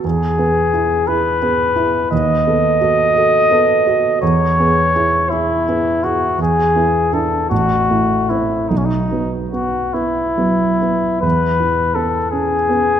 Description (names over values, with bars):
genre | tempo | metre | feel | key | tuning
classical, romantic duo for trumpet and grand piano | 45-59 BPM (dotted quarters) | 6/8 | rubato | E major | A4 = 441 Hz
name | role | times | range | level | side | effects
mellow trumpet | melody | 0.0-13.0 s | C#4 to D#5 | -16 LUFS | left 1 dB | none
warm grand piano | accompaniment | 0.0-13.0 s | A1 to A4 | -18 LUFS | right 2 dB | none
room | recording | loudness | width
wet scoring stage reverb, RT60 1.9 s | dark, warm production | -14 LUFS | side -9 dB against mid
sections
0.0-11.2 A section; 11.2-13.0 B section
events
none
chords
0.0 E; 2.1 B7/D#; 4.2 E; 6.4 E7; 7.5 Am; 8.7 B5; 11.2 E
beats
| 0.04 1.07 | 2.12 3.15 | 4.22 5.31 | 6.39 7.50 | 8.71 9.95 | 11.24 12.34